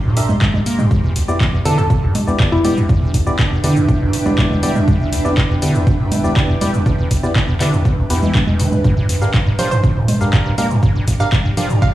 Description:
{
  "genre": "acid house",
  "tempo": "121 BPM",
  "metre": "4/4",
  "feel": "straight",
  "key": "E phrygian",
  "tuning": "A4 = 441 Hz",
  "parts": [
    { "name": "acid bass, square", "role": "riff", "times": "0.0-11.9 s", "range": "E1 to Bb3", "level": "-18 LUFS", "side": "equal", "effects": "overdrive, cassette tape, digital delay" },
    { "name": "granular cloud pad", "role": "texture", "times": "0.0-11.9 s", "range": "D4 to C6", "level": "-24 LUFS", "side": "right 2 dB", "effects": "built-in reverb, sidechain pumping" },
    { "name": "percussive organ stab", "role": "stabs", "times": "0.2-11.7 s", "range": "B3 to F5", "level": "-24 LUFS", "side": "left 1 dB", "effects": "chorus, digital delay" },
    { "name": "punchy analog drum machine", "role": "drums", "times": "0.2-11.9 s", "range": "congas, handclaps, hi-hat, shaker", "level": "-22 LUFS", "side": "right 1 dB", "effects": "overdrive" },
    { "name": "electronic kick drum", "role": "drums", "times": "0.4-11.9 s", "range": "none", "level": "-17 LUFS", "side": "equal", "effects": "overdrive" },
    { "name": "hollow square pluck", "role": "melody", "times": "1.7-3.2, 9.6-11.9 s", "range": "E4 to F5", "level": "-22 LUFS", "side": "right 1 dB", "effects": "chorus, tape echo" }
  ],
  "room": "moderate studio reverb, RT60 0.5 s",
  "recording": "played on a big sound system in a bare room, large studio reverb, small room ambience",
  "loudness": "-13 LUFS",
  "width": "side -14 dB against mid",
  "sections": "0.0-11.9 A section",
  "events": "none",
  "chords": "0.0 Gm; 0.9 Em7; 8.8 Gm7"
}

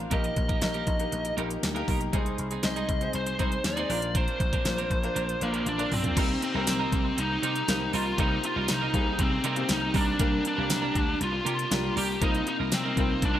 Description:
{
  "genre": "1980s-style pop",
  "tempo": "119 BPM",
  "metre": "4/4",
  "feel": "straight",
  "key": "unclear",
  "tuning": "A4 = 440 Hz",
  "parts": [
    { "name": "clear concert grand piano", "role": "accompaniment", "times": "0.0-13.4 s", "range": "Bb2 to D5", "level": "-33 LUFS", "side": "left 3 dB", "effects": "none" },
    { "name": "twelve-string electric guitar", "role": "riff", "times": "0.0-13.4 s", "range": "F3 to Bb4", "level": "-36 LUFS", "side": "right 8 dB", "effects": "lush chorus" },
    { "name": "vintage slap bass", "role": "bass", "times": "0.0-13.4 s", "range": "Bb1 to C3", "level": "-32 LUFS", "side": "equal", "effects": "none" },
    { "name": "biting lead guitar", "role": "melody", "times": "0.1-13.4 s", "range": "Bb3 to Eb5", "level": "-30 LUFS", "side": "equal", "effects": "overdrive, digital delay" },
    { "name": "pop drum kit", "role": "drums", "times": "0.1-13.3 s", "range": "crash cymbal, hi-hat, kick drum, snare drum, tambourine, toms", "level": "-29 LUFS", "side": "equal", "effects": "none" },
    { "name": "heavy high-gain guitar", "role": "accompaniment", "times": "6.2-13.4 s", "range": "F2 to Eb4", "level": "-38 LUFS", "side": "left 8 dB", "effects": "distortion, analog chorus" }
  ],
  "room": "light reverb, digital ambience",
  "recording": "bright 1980s-style digital production",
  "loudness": "-25 LUFS",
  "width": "side -11 dB against mid",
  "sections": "0.0-6.2 A section; 6.2-13.4 B section",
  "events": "drum fill 5.7-6.2",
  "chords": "0.1 Eb/Bb; 2.1 Ab/C; 3.9 Bbadd9; 6.2 Eb6/C; 8.2 Cm7; 10.2 Gm/C; 12.2 F7sus4/C"
}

